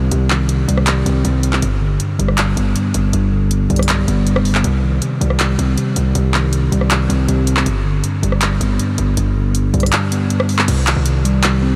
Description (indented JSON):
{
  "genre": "hip hop, trap",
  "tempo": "159 BPM",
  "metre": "4/4",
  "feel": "half-time",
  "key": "C harmonic minor",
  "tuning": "A4 = 440 Hz",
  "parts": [
    { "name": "mellow tine electric piano", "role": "accompaniment", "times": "0.0-11.8 s", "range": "G2 to C4", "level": "-19 LUFS", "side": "equal", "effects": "low-pass filter" },
    { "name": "distorted 808-style bass", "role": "bass", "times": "0.0-11.8 s", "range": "F1 to C2", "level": "-21 LUFS", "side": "equal", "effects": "distortion" },
    { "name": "trap drum kit", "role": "drums", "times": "0.1-11.5 s", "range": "crash cymbal, handclaps, hi-hat, rim click", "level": "-23 LUFS", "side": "equal", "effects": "overdrive" }
  ],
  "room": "moderate huge ambient reverb, RT60 7.7 s",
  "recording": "dreamy mix soaked in reverb",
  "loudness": "-16 LUFS",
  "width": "mono",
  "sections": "0.0-10.7 A section; 10.7-11.8 B section",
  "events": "kick muted 9.9-10.7",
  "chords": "0.0 Cm; 1.6 G; 4.6 Cm; 7.7 G; 10.7 Cm"
}